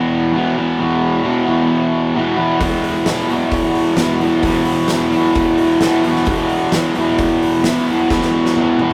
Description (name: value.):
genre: garage rock duo or trio.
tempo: 131 BPM.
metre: 4/4.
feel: straight.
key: unclear.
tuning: A4 = 441 Hz.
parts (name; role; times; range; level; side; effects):
fuzz guitar; riff; 0.0-8.9 s; E2 to E3; -16 LUFS; equal; distortion.
oversized low-tuned drum kit; drums; 2.6-8.9 s; hi-hat, kick drum, snare drum, toms; -24 LUFS; equal; none.
room: moderate stone room reverb, RT60 1.3 s.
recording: rough rehearsal-room recording, tube saturation.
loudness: -16 LUFS.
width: mono.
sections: 0.0-8.9 A section.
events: drum fill 8.1-8.9.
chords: 0.0 E5.